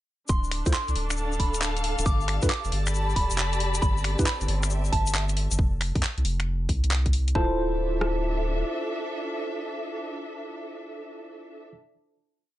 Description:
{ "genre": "UK garage, two-step garage", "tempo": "136 BPM", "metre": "4/4", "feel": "swing 67% on 16ths", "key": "D dorian", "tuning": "A4 = 440 Hz", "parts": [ { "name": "soft synth bell", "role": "melody", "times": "0.3-11.7 s", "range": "A5 to D6", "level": "-34 LUFS", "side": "right 1 dB", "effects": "chorus, phaser, ping-pong delay" }, { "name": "airy breathy pad", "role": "sustained chords", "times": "0.6-5.6 s", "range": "A4 to A5", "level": "-39 LUFS", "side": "left 2 dB", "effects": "chorus, sidechain pumping" }, { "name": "soft dub sub bass", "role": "bass", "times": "0.3-8.6 s", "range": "D1 to G2", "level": "-27 LUFS", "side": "equal", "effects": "none" }, { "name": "garage drum kit", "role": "drums", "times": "0.3-8.2 s", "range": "kick drum, rim click", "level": "-26 LUFS", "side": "equal", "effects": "none" }, { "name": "egg shaker", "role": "percussion", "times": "0.3-5.6 s", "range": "none", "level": "-35 LUFS", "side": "left 5 dB", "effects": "none" }, { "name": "dark studio string section", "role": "texture", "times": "0.3-11.6 s", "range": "C4 to B5", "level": "-34 LUFS", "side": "equal", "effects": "sidechain pumping" }, { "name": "garage drum kit", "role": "drums", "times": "0.5-7.3 s", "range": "finger snaps, handclaps, hi-hat", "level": "-31 LUFS", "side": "equal", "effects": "none" }, { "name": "tine electric piano", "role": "stabs", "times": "0.7-4.3, 7.4-11.7 s", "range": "D4 to C5", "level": "-31 LUFS", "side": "equal", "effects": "analog chorus, digital delay" } ], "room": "light reverb", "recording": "nothing above 10.3 kHz", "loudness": "-24 LUFS", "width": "side -14 dB against mid", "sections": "0.3-7.4 drop; 7.4-10.9 final chord", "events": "drop 0.3-7.4", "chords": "0.3 Dm7; 2.1 G7; 3.8 Cmaj9/G; 5.6 F5; 7.4 Dm9" }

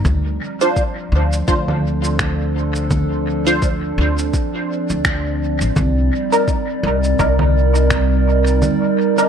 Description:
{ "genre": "ambient dub", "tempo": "84 BPM", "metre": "4/4", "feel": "swing 57% on 16ths", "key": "unclear", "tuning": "A4 = 441 Hz", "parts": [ { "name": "warbly tape-like pad", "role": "sustained chords", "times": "0.0-9.3 s", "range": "F3 to D5", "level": "-20 LUFS", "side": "right 2 dB", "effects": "chorus, built-in reverb" }, { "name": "upright bass", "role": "bass", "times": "0.0-8.6 s", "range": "A1 to D2", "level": "-18 LUFS", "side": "equal", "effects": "none" }, { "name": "electronic congas, shaker and finger snaps", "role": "drums", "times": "0.0-9.3 s", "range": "none", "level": "-25 LUFS", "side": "right 1 dB", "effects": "studio reverb, dub echo" }, { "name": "electronic kick drum", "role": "drums", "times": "0.1-8.1 s", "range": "none", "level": "-21 LUFS", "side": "left 1 dB", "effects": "overdrive, studio reverb" }, { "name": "filtered dub chord stab", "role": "stabs", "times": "0.6-9.3 s", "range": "D4 to C5", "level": "-21 LUFS", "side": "right 1 dB", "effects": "phaser, ensemble chorus, dub echo" } ], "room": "light reverb, digital ambience", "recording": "none", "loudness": "-15 LUFS", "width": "side -7 dB against mid", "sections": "0.0-9.3 A section", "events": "none", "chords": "0.0 Dm7; 5.8 Cm9" }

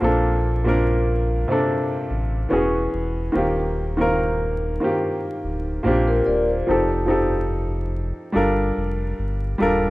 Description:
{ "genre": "lo-fi hip hop", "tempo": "72 BPM", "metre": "4/4", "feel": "swing 56% on 16ths", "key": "Bb major", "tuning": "A4 = 440 Hz", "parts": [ { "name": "warm upright piano", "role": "accompaniment", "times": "0.0-9.9 s", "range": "Bb2 to Bb4", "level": "-21 LUFS", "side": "equal", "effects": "cassette tape, low-pass filter" }, { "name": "sub bass with octave", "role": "bass", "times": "0.0-9.9 s", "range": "D1 to Bb1", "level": "-24 LUFS", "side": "equal", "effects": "none" }, { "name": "vibraphone with soft mallets", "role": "second line", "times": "6.1-6.9 s", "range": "G4 to D5", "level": "-24 LUFS", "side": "left 2 dB", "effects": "low-pass filter, tape echo" } ], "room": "light reverb, small room ambience", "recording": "rough home demo mix, vinyl crackle", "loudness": "-19 LUFS", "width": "side -19 dB against mid", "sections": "0.0-6.7 A section; 6.7-9.9 B section", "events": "none", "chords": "0.0 Bbmaj9; 2.5 E69; 3.3 Eb69; 5.8 Bb69; 6.7 F7; 8.3 Gm9" }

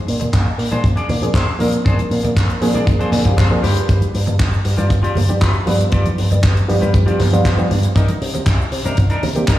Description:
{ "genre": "nu-disco, nu disco", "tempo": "118 BPM", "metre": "4/4", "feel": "straight", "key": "unclear", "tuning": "A4 = 445 Hz", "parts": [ { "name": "semi-hollow electric guitar", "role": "riff", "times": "0.1-9.6 s", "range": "D4 to Ab5", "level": "-25 LUFS", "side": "left 2 dB", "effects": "lush chorus, dub echo" }, { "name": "picked electric bass with an envelope filter", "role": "bass", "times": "0.1-9.6 s", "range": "G1 to C3", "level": "-18 LUFS", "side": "equal", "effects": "none" }, { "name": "damped 70s drum kit", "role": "drums", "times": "0.1-9.6 s", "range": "handclaps, hi-hat", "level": "-26 LUFS", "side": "left 1 dB", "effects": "none" }, { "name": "congas and cabasa", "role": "percussion", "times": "0.2-9.6 s", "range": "none", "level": "-26 LUFS", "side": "right 2 dB", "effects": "none" }, { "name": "kick drum", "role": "drums", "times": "0.3-9.6 s", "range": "none", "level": "-15 LUFS", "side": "equal", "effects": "none" }, { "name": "barky reed electric piano", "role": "accompaniment", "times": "1.2-9.5 s", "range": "Eb3 to B4", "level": "-21 LUFS", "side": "right 1 dB", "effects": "sidechain pumping, dub echo" } ], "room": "light reverb, small room ambience", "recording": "played on a big sound system in a bare room, stone room reverb, small room reverb", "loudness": "-14 LUFS", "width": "side -14 dB against mid", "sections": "0.0-9.6 A section", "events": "clean electric guitar fill 2.9-3.9", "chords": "0.0 Bb9; 3.6 G7; 8.0 Cm9" }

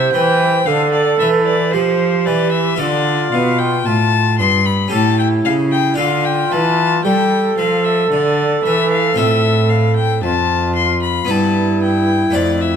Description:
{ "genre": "classical, baroque-style sonata movement with continuo", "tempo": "56 BPM", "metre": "3/4", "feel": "straight", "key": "unclear", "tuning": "A4 = 440 Hz", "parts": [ { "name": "rich violin", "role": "melody", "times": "0.0-12.8 s", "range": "C5 to C6", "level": "-18 LUFS", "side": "left 8 dB", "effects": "none" }, { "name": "mellow hollow baroque flute", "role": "second line", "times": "0.0-12.8 s", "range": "E4 to C5", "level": "-17 LUFS", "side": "right 3 dB", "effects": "none" }, { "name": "harpsichord", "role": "accompaniment", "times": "0.0-12.8 s", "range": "F2 to D5", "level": "-22 LUFS", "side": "left 2 dB", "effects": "none" }, { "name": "rich cello", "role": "bass", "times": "0.0-12.8 s", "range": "F2 to G3", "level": "-18 LUFS", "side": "right 2 dB", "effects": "none" } ], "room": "light reverb", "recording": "close, detailed microphones", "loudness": "-13 LUFS", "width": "side -7 dB against mid", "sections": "0.0-12.8 A section", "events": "none", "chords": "0.0 C; 2.8 Dm; 4.9 A7; 6.0 Dm; 9.2 F/A; 11.3 Em/G" }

